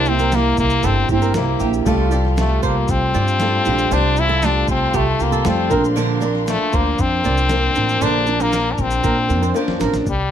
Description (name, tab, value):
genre	acoustic pop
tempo	117 BPM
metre	4/4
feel	straight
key	unclear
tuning	A4 = 439 Hz
part	stopped French horn	melody	0.0-10.3 s	G3 to E4	-19 LUFS	left 4 dB	none
part	picked steel-string acoustic guitar	accompaniment	0.0-10.1 s	Bb2 to Bb4	-23 LUFS	right 7 dB	none
part	warm baby grand piano	accompaniment	0.0-10.1 s	G3 to C5	-26 LUFS	left 5 dB	none
part	muted studio string section	sustained chords	0.0-10.0 s	A4 to C6	-31 LUFS	left 5 dB	none
part	flamenco guitar	arpeggios	0.0-9.9 s	G4 to D5	-25 LUFS	right 8 dB	none
part	upright bass	bass	0.0-10.3 s	G1 to Bb2	-20 LUFS	equal	none
part	dusty soul sampler-style drum kit	drums	0.1-10.2 s	kick drum, shaker, snare drum	-26 LUFS	equal	overdrive
room	light reverb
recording	close, detailed microphones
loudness	-15 LUFS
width	side -9 dB against mid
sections	0.0-10.1 A section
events	drum fill 9.0-10.1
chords	0.0 C7; 1.9 Fadd9; 5.7 Bbadd9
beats	0.32 0.83 1.35 | 1.86 2.37 2.89 3.40 | 3.91 4.42 4.94 5.45 | 5.96 6.48 6.99 7.50 | 8.02 8.53 9.04 9.55 | 10.07